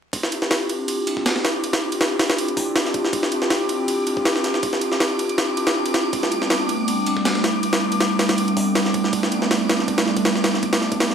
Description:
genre	drum and bass, jungle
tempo	160 BPM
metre	4/4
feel	swing 54% on 16ths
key	D minor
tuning	A4 = 445 Hz
part	warbly tape-like pad	sustained chords	0.3-11.1 s	G3 to G4	-22 LUFS	right 1 dB	chorus, built-in reverb, vintage 12-bit sampler grit
part	jungle sampler-style drum kit	drums	0.1-11.1 s	hi-hat, kick drum, ride cymbal, snare drum	-21 LUFS	equal	high-pass filter on kick, high-pass filter on cymbals, high-pass filter on snare, high-pass filter on hats, high-pass filter on room
part	wind-like tuned noise texture	texture	0.8-11.1 s	D6	-30 LUFS	left 2 dB	built-in reverb
room	moderate digital room reverb, RT60 1.1 s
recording	vinyl crackle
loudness	-18 LUFS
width	side -7 dB against mid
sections	0.1-11.1 A section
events	none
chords	0.1 Dm11; 6.1 Am11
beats	| 0.13 0.51 0.88 1.26 | 1.63 2.01 2.38 2.76 | 3.13 3.51 3.88 4.26 | 4.63 5.01 5.38 5.76 | 6.13 6.51 6.88 7.26 | 7.63 8.01 8.38 8.76 | 9.13 9.51 9.88 10.26 | 10.63 11.01

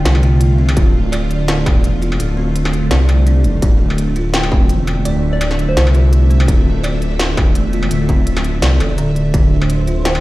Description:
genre	half-time drum and bass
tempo	168 BPM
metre	4/4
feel	swing 55% on 16ths, half-time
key	D minor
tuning	A4 = 439 Hz
part	bowed-like drone	sustained chords	0.0-10.2 s	D3 to E5	-22 LUFS	right 1 dB	built-in reverb, phaser, vintage 12-bit sampler grit, sidechain pumping
part	buzzing kalimba	arpeggios	0.0-10.2 s	D3 to D5	-23 LUFS	right 2 dB	digital delay
part	dark detuned saw bass	bass	0.0-10.2 s	D1 to C2	-14 LUFS	equal	none
part	industrial drum kit	drums	0.1-10.2 s	hi-hat, snare drum, struck metal	-21 LUFS	equal	overdrive
part	electronic kick drum	drums	0.8-9.4 s	none	-14 LUFS	equal	distortion, overdrive
part	soft synth bell	melody	4.3-6.0, 10.1-10.2 s	C5 to G5	-26 LUFS	left 1 dB	chorus, phaser, vintage 12-bit sampler grit, digital delay
part	flickering grainy texture	texture	9.7-10.2 s	C5	-25 LUFS	right 3 dB	built-in reverb
room	little or no reverb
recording	played on a big sound system in a bare room, stone room reverb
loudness	-12 LUFS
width	side -18 dB against mid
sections	0.0-10.2 A section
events	none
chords	0.0 Dm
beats	0.05 0.41 | 0.77 1.12 1.48 1.84 | 2.19 2.55 2.91 3.27 | 3.62 3.98 4.34 4.70 | 5.05 5.41 5.77 6.12 | 6.48 6.84 7.20 7.55 | 7.91 8.27 8.62 8.98 | 9.34 9.70 10.05

